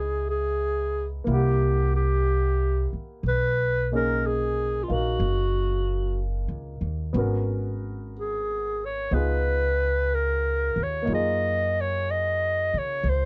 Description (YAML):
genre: jazz ballad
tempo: 61 BPM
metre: 4/4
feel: swing 69% on 8ths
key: unclear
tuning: A4 = 440 Hz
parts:
  - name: growling clarinet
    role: melody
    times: 0.0-13.3 s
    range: F4 to Eb5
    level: -28 LUFS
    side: equal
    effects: none
  - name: warm baby grand piano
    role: accompaniment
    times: 0.0-13.3 s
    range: Bb3 to F#5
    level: -35 LUFS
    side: equal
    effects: none
  - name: upright bass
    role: bass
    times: 0.0-13.3 s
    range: F#1 to Db3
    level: -29 LUFS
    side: equal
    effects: none
room: light reverb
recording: dark, warm production, nothing above 7.6 kHz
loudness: -26 LUFS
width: mono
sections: 0.0-13.3 A section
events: none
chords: 0.0 Dbm7; 1.3 C7#11; 3.2 Bmaj13; 7.2 Abm11; 9.1 Db9; 11.1 Gbmaj13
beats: 0.30 1.28 2.26 | 3.24 4.22 5.20 6.18 | 7.16 8.14 9.12 10.10 | 11.07 12.05 13.04